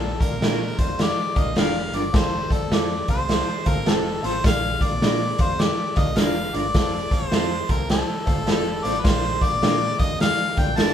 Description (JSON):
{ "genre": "uptempo 1960s-style soul", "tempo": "104 BPM", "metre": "4/4", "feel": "swing 65% on 8ths", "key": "Bb major", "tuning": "A4 = 440 Hz", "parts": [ { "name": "warm harmonica", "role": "melody", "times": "0.0-10.9 s", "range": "A4 to A5", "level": "-26 LUFS", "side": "left 1 dB", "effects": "none" }, { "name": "clear grand piano", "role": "accompaniment", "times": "0.0-10.9 s", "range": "Bb2 to G5", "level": "-31 LUFS", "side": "left 4 dB", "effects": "none" }, { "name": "hollow-body short-scale fingered electric bass", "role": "bass", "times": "0.0-10.9 s", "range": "F1 to Bb2", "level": "-30 LUFS", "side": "equal", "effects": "none" }, { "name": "raw garage drum kit", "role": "drums", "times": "0.2-10.9 s", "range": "hi-hat, kick drum, snare drum", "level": "-21 LUFS", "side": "equal", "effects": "none" }, { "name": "electric guitar through a small old amp", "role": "stabs", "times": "0.4-10.9 s", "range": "C4 to Bb4", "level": "-28 LUFS", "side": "right 2 dB", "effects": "none" } ], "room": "moderate studio ambience, RT60 0.5 s", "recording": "band playing live in one room", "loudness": "-19 LUFS", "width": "side -9 dB against mid", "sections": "0.0-10.9 A section", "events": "none", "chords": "0.0 Bb; 2.1 F; 4.4 Bb; 6.7 F; 9.0 Bb" }